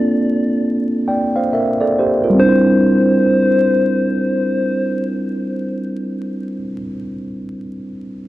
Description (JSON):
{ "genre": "lo-fi hip hop", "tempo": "69 BPM", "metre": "4/4", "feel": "swing 62% on 16ths", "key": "C major", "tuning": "A4 = 439 Hz", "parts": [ { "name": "soft struck synth lead", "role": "melody", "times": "0.0-6.6 s", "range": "C5 to D5", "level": "-19 LUFS", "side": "left 1 dB", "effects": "chorus, low-pass filter, tape echo" }, { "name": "mellow tine electric piano", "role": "accompaniment", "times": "0.0-8.3 s", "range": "G3 to G5", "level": "-16 LUFS", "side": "right 1 dB", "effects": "medium stereo tremolo, low-pass filter" } ], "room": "wet small room reverb, RT60 0.5 s", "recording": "vinyl crackle", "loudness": "-14 LUFS", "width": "side -16 dB against mid", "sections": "0.0-2.4 A section; 2.4-5.9 B section", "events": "none", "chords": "0.0 Bbmaj7; 2.4 Cadd9", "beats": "0.64 1.51 | 2.38 3.25 4.12 4.99" }